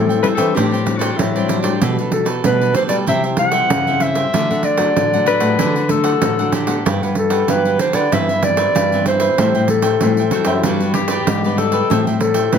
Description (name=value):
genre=samba and choro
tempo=95 BPM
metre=4/4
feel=straight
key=G major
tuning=A4 = 440 Hz
part: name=mellow clarinet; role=melody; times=0.0-12.6 s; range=A4 to F#5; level=-17 LUFS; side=left 1 dB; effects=none
part: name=cavaquinho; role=accompaniment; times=0.0-12.6 s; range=D4 to G5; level=-25 LUFS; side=right 6 dB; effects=none
part: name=nylon-string guitar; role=accompaniment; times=0.0-12.6 s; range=G2 to E4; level=-24 LUFS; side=left 4 dB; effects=none
part: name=nylon-string guitar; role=bass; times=0.0-12.6 s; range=F#2 to G3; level=-20 LUFS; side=left 1 dB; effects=none
part: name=pandeiro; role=percussion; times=0.1-12.6 s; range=none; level=-21 LUFS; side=right 5 dB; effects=none
part: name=warm tenor saxophone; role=second line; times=0.2-12.1 s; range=D4 to B4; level=-21 LUFS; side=left 8 dB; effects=none
room=light reverb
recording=close, detailed microphones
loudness=-14 LUFS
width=side -7 dB against mid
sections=0.0-12.6 A section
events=none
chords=0.0 Am7; 0.6 D7sus4/A; 1.8 Gadd9/B; 3.1 C; 4.3 D; 6.9 Gmaj7; 8.1 Cmaj7/G; 9.4 Am7; 10.6 G; 11.9 Am7